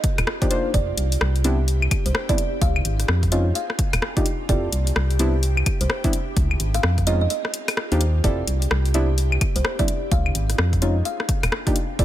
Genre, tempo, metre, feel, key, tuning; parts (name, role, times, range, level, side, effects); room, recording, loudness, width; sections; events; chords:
UK garage, two-step garage; 128 BPM; 4/4; swing 62% on 16ths; A4 = 441 Hz
ethereal airy pad; sustained chords; 0.0-12.0 s; F4 to G4; -33 LUFS; right 1 dB; ensemble chorus, built-in reverb, phaser, sidechain pumping
electronic kick drum; drums; 0.0-12.0 s; -23 LUFS; equal; overdrive
punchy analog drum machine; drums; 0.0-12.0 s; claves, hi-hat, rim click; -25 LUFS; left 2 dB; overdrive
organ-like FM bass; bass; 0.2-12.0 s; Eb1 to F2; -21 LUFS; equal
kalimba; melody; 0.4-12.0 s; G4 to F5; -30 LUFS; right 2 dB; digital delay
deep mellow chord stab; stabs; 0.4-12.0 s; G3 to C5; -27 LUFS; left 1 dB; chorus, cassette tape, digital delay
little or no reverb; -19 LUFS; side -13 dB against mid
0.0-12.0 A section
break 7.3-8.2
0.0 Ebmaj9; 0.7 Fmaj9; 1.4 Cmaj9; 2.4 Dbmaj9; 3.6 Ebmaj9; 4.5 Fmaj9; 5.2 Cmaj9; 6.1 Dbmaj9; 7.3 Ebmaj9; 8.2 Fmaj9; 8.9 Cmaj9; 9.9 Dbmaj9; 11.1 Ebmaj9